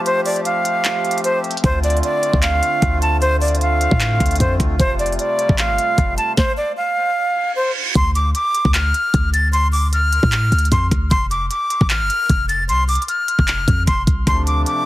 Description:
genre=hip hop, trap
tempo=152 BPM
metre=4/4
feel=half-time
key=D minor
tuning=A4 = 440 Hz
part: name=accordion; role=sustained chords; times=0.0-6.4, 14.3-14.9 s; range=C3 to G4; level=-25 LUFS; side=equal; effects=none
part: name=breathy bright jazz flute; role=melody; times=0.1-14.9 s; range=C5 to A6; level=-18 LUFS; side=equal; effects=none
part: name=trap drum kit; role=drums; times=0.1-14.8 s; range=handclaps, hi-hat, kick drum, snare drum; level=-19 LUFS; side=equal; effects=overdrive
part: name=warm 808-style bass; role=bass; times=1.6-14.6 s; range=F1 to A2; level=-18 LUFS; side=equal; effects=none
part: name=reverse cymbal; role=sound effects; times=7.4-8.0 s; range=none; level=-25 LUFS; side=right 6 dB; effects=none
room=little or no reverb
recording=heavily compressed radio sound, multiband compression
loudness=-15 LUFS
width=side -16 dB against mid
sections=0.0-8.0 A section; 8.0-14.9 B section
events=break 0.0-1.6; reverse cymbal 7.4-8.0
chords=0.0 Fadd9; 1.6 Dm7; 4.8 Fadd9; 8.0 Dm; 11.1 F5; 14.3 Dm7

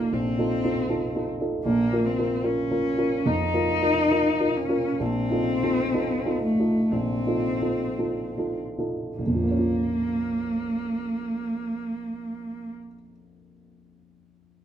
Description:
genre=classical, romantic duo for cello and grand piano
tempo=48-81 BPM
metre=4/4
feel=rubato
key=Bb minor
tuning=A4 = 440 Hz
part: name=warm cello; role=melody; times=0.0-12.7 s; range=A3 to Eb4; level=-26 LUFS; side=left 1 dB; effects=none
part: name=dark baby grand piano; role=accompaniment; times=0.0-14.6 s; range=Bb1 to Bb4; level=-26 LUFS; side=right 1 dB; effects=none
room=moderate stone room reverb, RT60 1.3 s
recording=minimal, uncompressed stereo recording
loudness=-23 LUFS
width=side -9 dB against mid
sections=0.0-9.2 A section; 9.2-13.9 B section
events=slowing down 0.1-9.2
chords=0.0 F7/Bb; 1.6 Bbm; 5.0 F7/Bb; 9.2 Bbm

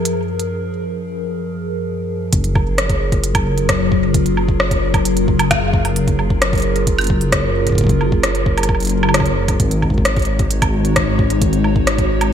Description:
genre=IDM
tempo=132 BPM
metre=4/4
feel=straight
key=Gb major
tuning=A4 = 442 Hz
part: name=warbly tape-like pad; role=sustained chords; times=0.0-12.3 s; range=Gb2 to Db5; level=-20 LUFS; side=left 2 dB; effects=chorus, built-in reverb, phaser, sidechain pumping
part: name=organic electronic drum kit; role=drums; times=0.1-12.3 s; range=hi-hat, rim click, woodblock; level=-20 LUFS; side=equal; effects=gated reverb, digital delay
part: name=dark detuned saw bass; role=bass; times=2.3-12.3 s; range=Gb1 to Ab1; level=-18 LUFS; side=equal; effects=none
part: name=electronic kick drum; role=drums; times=2.3-12.1 s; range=none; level=-18 LUFS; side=equal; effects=none
room=moderate plate reverb, RT60 2.3 s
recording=bright 1980s-style digital production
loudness=-14 LUFS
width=side -9 dB against mid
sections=0.0-2.3 A section; 2.3-12.3 B section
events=break 0.5-2.3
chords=0.0 Gbmaj9; 9.6 Ab7sus4

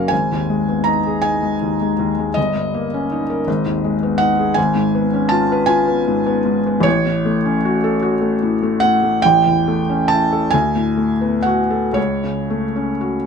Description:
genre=classical, romantic nocturne for solo piano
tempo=37-55 BPM (dotted quarters)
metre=6/8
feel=rubato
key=F# minor from 4.6 s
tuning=A4 = 442 Hz
part: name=felt-muted upright piano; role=solo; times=0.0-13.3 s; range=G1 to A#5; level=-15 LUFS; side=equal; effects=none
room=light reverb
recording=none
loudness=-15 LUFS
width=side -6 dB against mid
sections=0.0-13.3 A section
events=none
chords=0.1 G#m; 2.4 D#7/G; 3.5 G#m; 4.6 C#7/G#; 6.9 F#m/A; 9.2 A7; 10.5 D6; 12.0 F#m/C#

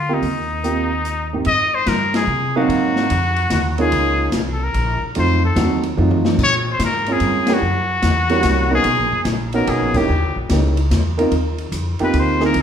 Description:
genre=jazz, small-group swing and bop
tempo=146 BPM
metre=3/4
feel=swing 66% on 8ths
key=unclear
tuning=A4 = 440 Hz
part: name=trumpet with straight mute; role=melody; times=0.0-12.6 s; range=Eb4 to Eb5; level=-20 LUFS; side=left 2 dB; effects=none
part: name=upright bass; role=bass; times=0.0-12.6 s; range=F#1 to C3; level=-20 LUFS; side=equal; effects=none
part: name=warm concert grand piano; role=accompaniment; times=0.1-12.5 s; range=Ab2 to F5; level=-20 LUFS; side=right 3 dB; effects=none
part: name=open jazz drum kit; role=drums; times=0.2-12.6 s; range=crash cymbal, hi-hat, kick drum, ride cymbal, snare drum, toms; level=-24 LUFS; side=left 2 dB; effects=none
room=wet large studio reverb, RT60 1.1 s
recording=band playing live in one room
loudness=-15 LUFS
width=side -8 dB against mid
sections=0.0-1.5 A section; 1.5-11.3 B section; 11.3-12.6 C section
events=band accent 2.1, 7.4, 9.9; drum fill 6.0-6.4; muted trumpet solo 11.3-12.6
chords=0.0 Eb69; 1.5 Abmaj9; 2.7 Ab13; 3.9 Db6; 5.2 F7b9; 6.4 Bbm9; 7.6 Gb7b9; 8.9 Bmaj9; 10.1 Eb7b9; 11.3 Eb69

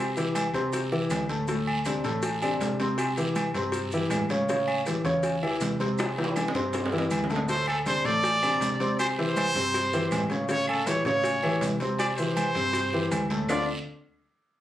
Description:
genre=latin, salsa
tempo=160 BPM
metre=4/4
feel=straight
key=unclear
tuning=A4 = 440 Hz
part: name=warm baby grand piano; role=accompaniment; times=0.0-13.7 s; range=A2 to C#5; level=-28 LUFS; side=left 1 dB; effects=none
part: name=hollow-body short-scale fingered electric bass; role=bass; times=0.0-13.7 s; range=A1 to A2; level=-35 LUFS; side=equal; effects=none
part: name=congas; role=percussion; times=0.2-13.6 s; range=none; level=-35 LUFS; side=right 1 dB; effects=none
part: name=cowbell and bongos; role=percussion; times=0.2-13.6 s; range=none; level=-35 LUFS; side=left 3 dB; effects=none
part: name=maracas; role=percussion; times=0.2-13.6 s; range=none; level=-43 LUFS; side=left 1 dB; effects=none
part: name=claves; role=percussion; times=0.4-13.6 s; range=none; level=-40 LUFS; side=equal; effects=none
part: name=guiro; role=percussion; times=0.4-13.6 s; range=none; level=-40 LUFS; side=right 3 dB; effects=none
part: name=timbales and agogo bells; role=percussion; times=0.4-13.6 s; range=none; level=-33 LUFS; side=right 2 dB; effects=none
part: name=bright trumpet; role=melody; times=7.5-13.7 s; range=A4 to D5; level=-27 LUFS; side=right 1 dB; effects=none
room=moderate studio ambience, RT60 0.5 s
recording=recorded on a phone in the room, club reverb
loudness=-24 LUFS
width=side -12 dB against mid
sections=0.0-7.5 A section; 7.5-13.5 B section; 13.5-14.6 C section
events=drum fill 6.0-7.5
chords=0.0 C; 1.5 D5; 3.0 C; 7.5 D5; 9.0 C; 13.5 Dm7

